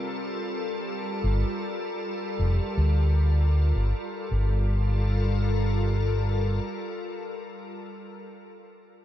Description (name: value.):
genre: ambient dub.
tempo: 78 BPM.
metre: 4/4.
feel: swing 53% on 16ths.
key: G minor.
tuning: A4 = 444 Hz.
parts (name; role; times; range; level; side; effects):
soft additive organ-like pad; sustained chords; 0.0-7.7 s; G3 to Bb4; -31 LUFS; left 1 dB; ensemble chorus, built-in reverb.
fingered electric bass; bass; 1.2-6.6 s; F1 to D2; -22 LUFS; equal; none.
room: light reverb, digital ambience.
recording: dark, warm production.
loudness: -24 LUFS.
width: side -12 dB against mid.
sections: 0.0-4.3 A section; 4.3-7.4 B section.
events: none.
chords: 0.0 Gm9.